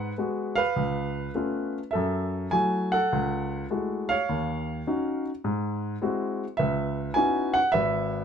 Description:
solo jazz; 103 BPM; 4/4; swing 69% on 8ths, rubato; C# minor; A4 = 443 Hz
warm baby grand piano; solo; 0.0-8.2 s; G#1 to G#5; -25 LUFS; equal
moderate club reverb, RT60 0.6 s; close, detailed microphones; -25 LUFS; side -7 dB against mid
0.0-8.2 A section
0.0 G#m7; 0.8 C#7b13; 1.9 F#m9; 4.3 D#m7; 5.4 G#aug7; 6.6 C#m11

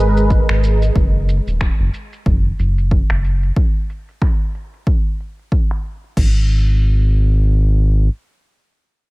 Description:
organic downtempo; 92 BPM; 4/4; swing 57% on 16ths; G# minor; A4 = 440 Hz
warm analog pad; sustained chords; 0.0-1.0 s; G#3 to D#5; -20 LUFS; right 2 dB; chorus, sidechain pumping
round analog bass; bass; 0.0-8.1 s; D#1 to G#1; -14 LUFS; equal; sidechain pumping
downlifter; sound effects; 0.9-1.0 s; barely audible
deep house drum kit; drums; 0.2-6.3 s; crash cymbal, finger snaps, shaker; -28 LUFS; left 1 dB; overdrive, low-pass filter on hats, low-pass filter on snare, low-pass filter on perc, low-pass filter on cymbals
electronic kick drum; drums; 0.3-6.3 s; -16 LUFS; equal; overdrive
little or no reverb; -14 LUFS; side -22 dB against mid
0.0-6.2 A section; 6.2-8.8 B section
filter sweep on drum 0.0-6.2
0.0 G#madd9; 1.0 N.C.

